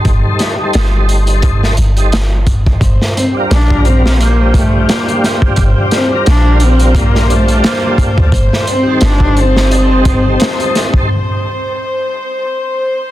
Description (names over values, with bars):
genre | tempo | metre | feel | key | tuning
trip hop | 87 BPM | 4/4 | swing 56% on 16ths | unclear | A4 = 440 Hz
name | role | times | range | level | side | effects
tonewheel organ | accompaniment | 0.0-11.1 s | Eb3 to C5 | -18 LUFS | equal | chorus vibrato, slow rotary speaker, tremolo, tape echo
crunchy breakbeat drum kit | drums | 0.0-11.1 s | hi-hat, kick drum, snare drum | -14 LUFS | equal | soft clipping on snare
soft 808-style bass | bass | 0.1-10.4 s | G1 to D2 | -11 LUFS | equal | tube saturation
warm studio violin section | sustained chords | 2.8-13.1 s | C5 | -20 LUFS | left 1 dB | none
dark cello | melody | 3.2-10.8 s | A3 to D4 | -16 LUFS | left 1 dB | vintage 12-bit sampler grit, tape echo
room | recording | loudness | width
studio reverb | dense, heavily limited modern master | -9 LUFS | side -14 dB against mid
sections
0.0-13.1 A section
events
break 11.1-13.1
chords
0.0 Am7b5/G; 2.8 Gm7; 8.3 Am7b5/G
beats
| 0.05 0.74 1.43 2.12 | 2.81 3.50 4.19 4.88 | 5.57 6.26 6.95 7.64 | 8.33 9.02 9.71 10.40 | 11.09 11.78 12.46